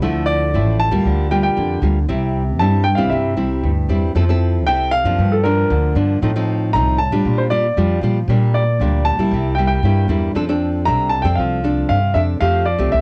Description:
samba; 116 BPM; 4/4; straight; F major; A4 = 440 Hz
nylon-string guitar; accompaniment; 0.0-13.0 s; G2 to A4; -22 LUFS; equal; cassette tape
upright bass; bass; 0.0-13.0 s; A1 to Bb2; -21 LUFS; equal; transformer saturation
warm baby grand piano; melody; 0.3-13.0 s; A4 to Bb5; -22 LUFS; equal
light reverb; home recording on cassette; -17 LUFS; mono
0.0-12.4 A section
0.0 Dmadd9; 1.1 Bb6/D; 2.1 C; 4.2 Fmaj7; 5.2 Gm7; 6.2 F7/A; 7.3 Bb6; 8.3 Gm/Bb; 9.3 C7; 10.4 F6

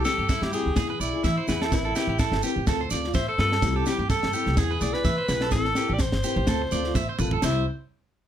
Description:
highlife guitar band; 126 BPM; 4/4; swing 55% on 16ths; C major; A4 = 440 Hz
breathy alto saxophone; melody; 0.0-7.7 s; E4 to E5; -28 LUFS; left 1 dB
nylon-string guitar; accompaniment; 0.0-7.6 s; G3 to B4; -31 LUFS; left 5 dB
electric guitar at the edge of break-up; arpeggios; 0.0-7.7 s; E4 to E5; -30 LUFS; right 6 dB; slapback echo
shekere; percussion; 0.0-7.7 s; -34 LUFS; right 4 dB
tight funk drum kit; drums; 0.1-7.5 s; crash cymbal, kick drum, snare drum, toms; -28 LUFS; equal
upright bass; bass; 0.2-7.7 s; G1 to E3; -28 LUFS; equal
light reverb; -22 LUFS; side -10 dB against mid
0.0-7.4 A section
drum fill 7.0-7.4
0.0 C; 0.8 E; 1.7 Amadd9; 2.7 Dm7; 3.6 C; 4.6 E; 5.5 Amadd9; 6.5 Dm7; 7.4 C

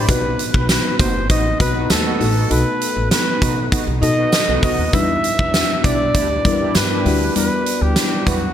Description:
1980s-style pop; 99 BPM; 4/4; straight; A4 = 439 Hz
mellow flugelhorn; melody; 0.0-8.5 s; F#4 to E5; -21 LUFS; equal
marimba with medium mallets; second line; 0.0-8.5 s; F#3 to E4; -27 LUFS; right 3 dB
mellow FM electric piano; accompaniment; 0.0-8.5 s; G3 to G5; -23 LUFS; left 4 dB; chorus
mellow synth brass; stabs; 0.0-8.4 s; B3 to B4; -27 LUFS; right 2 dB; chorus, digital delay
upright bass; bass; 0.0-8.5 s; F#1 to B2; -22 LUFS; equal
huge arena drum kit; drums; 0.1-8.4 s; hi-hat, kick drum, snare drum, tambourine; -19 LUFS; equal; gated reverb
tambourine; percussion; 0.1-8.4 s; -33 LUFS; right 7 dB
moderate lush hall reverb, RT60 1.9 s, studio reverb; bright 1980s-style digital production; -15 LUFS; side -10 dB against mid
0.0-8.5 A section
0.1 B; 4.9 Em7

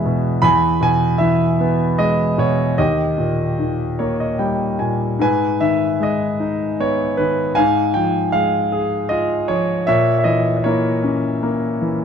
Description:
classical, lyrical solo piano; 76 BPM; 3/4; rubato; G# harmonic minor; A4 = 441 Hz
clear concert grand piano; solo; 0.0-12.0 s; D#2 to B5; -16 LUFS; equal
moderate studio reverb, RT60 0.9 s; dark, warm production; -16 LUFS; side -7 dB against mid
0.0-12.0 A section
grand piano fill 0.0-0.4, 3.6-5.2
0.0 E; 2.8 D#; 5.2 G#m; 7.6 C#add9/G#; 9.9 A#dim

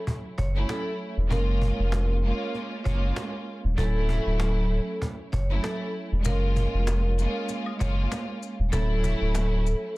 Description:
hip hop, boom-bap hip-hop; 97 BPM; 4/4; swing 55% on 16ths; A4 = 440 Hz
vibraphone with medium hard mallets; melody; 0.0-9.9 s; A4 to C#5; -34 LUFS; left 1 dB; high-pass filter, low-pass filter, ping-pong delay
warm studio string section; accompaniment; 0.0-10.0 s; F#3 to E#4; -32 LUFS; right 2 dB; cassette tape, high-pass filter, low-pass filter
cajon; drums; 0.1-9.7 s; -33 LUFS; equal
saturated sub bass; bass; 0.4-9.7 s; D1 to F#1; -24 LUFS; equal
maracas and woodblock; percussion; 6.2-9.8 s; -42 LUFS; left 8 dB
little or no reverb; dense, heavily limited modern master; -24 LUFS; side -21 dB against mid
0.0-10.0 A section
0.0 Dmaj9 (rootless); 1.3 F#maj9; 3.8 Dmaj9; 6.3 F#maj9; 8.7 Dmaj9

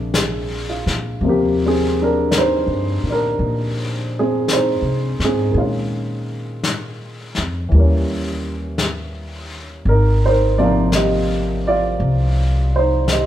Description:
jazz ballad; 56 BPM; 4/4; swing 68% on 8ths; Eb major; A4 = 440 Hz
warm baby grand piano; accompaniment; 0.0-13.3 s; C3 to Eb5; -19 LUFS; right 1 dB
upright bass; bass; 0.0-13.3 s; Ab1 to C3; -20 LUFS; equal
vintage brush drum kit; drums; 0.1-13.3 s; brushed snare drum, hi-hat, snare drum; -25 LUFS; left 3 dB
moderate large studio reverb, RT60 1.5 s; band playing live in one room; -16 LUFS; side -12 dB against mid
0.0-1.2 A section; 1.2-13.3 A section
0.0 Bb7; 1.2 Eb6; 5.6 Bbm7; 7.7 Eb7b9; 9.9 Abmaj9

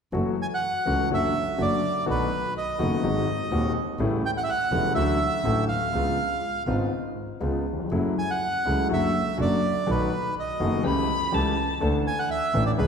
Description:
tango; 124 BPM; 4/4; rubato; F# minor; A4 = 440 Hz
warm concert grand piano; accompaniment; 0.1-12.9 s; D#1 to A4; -26 LUFS; left 2 dB
rich double bass; bass; 0.1-12.9 s; E1 to D#2; -29 LUFS; right 1 dB
bandoneon; melody; 0.4-12.9 s; B4 to G#5; -27 LUFS; right 2 dB
dark violin; second line; 10.9-11.9 s; A5 to B5; -29 LUFS; left 3 dB
wet concert hall reverb, RT60 2.0 s; recorded in a church or concert hall; -23 LUFS; side -6 dB against mid
0.1-12.9 A section
0.1 F#m7; 1.1 Dmaj7/F#; 2.1 B7; 3.0 G#7; 4.0 A7; 5.0 D; 5.9 C#7; 7.9 F#m7; 8.9 D/F#; 9.9 B7; 10.9 A7/C#; 11.8 Dsus2

